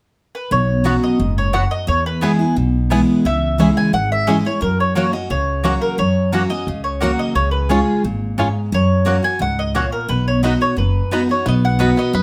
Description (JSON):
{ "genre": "bluegrass", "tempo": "175 BPM", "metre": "4/4", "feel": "straight", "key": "B major", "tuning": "A4 = 439 Hz", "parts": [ { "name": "mandolin", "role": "melody", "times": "0.3-12.2 s", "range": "G#4 to G#5", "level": "-23 LUFS", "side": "equal", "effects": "none" }, { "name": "picked steel-string acoustic guitar", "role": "accompaniment", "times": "0.5-12.2 s", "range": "E2 to G#4", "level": "-21 LUFS", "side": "equal", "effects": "none" }, { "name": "upright bass", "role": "bass", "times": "0.5-12.2 s", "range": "F#1 to F#2", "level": "-22 LUFS", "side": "equal", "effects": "none" }, { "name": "mandolin", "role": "stabs", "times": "0.8-11.9 s", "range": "A#3 to B5", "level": "-26 LUFS", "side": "equal", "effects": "none" }, { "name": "bluegrass banjo", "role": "melody", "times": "0.9-12.2 s", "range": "B3 to B4", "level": "-28 LUFS", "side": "equal", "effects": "none" } ], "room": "moderate studio reverb, RT60 0.9 s", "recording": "none", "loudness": "-17 LUFS", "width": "mono", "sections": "0.5-11.5 A section", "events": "none", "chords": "0.0 N.C.; 0.5 Bsus2; 1.9 E; 3.2 C#m; 4.6 F#; 7.4 C#; 8.7 F#; 10.1 B" }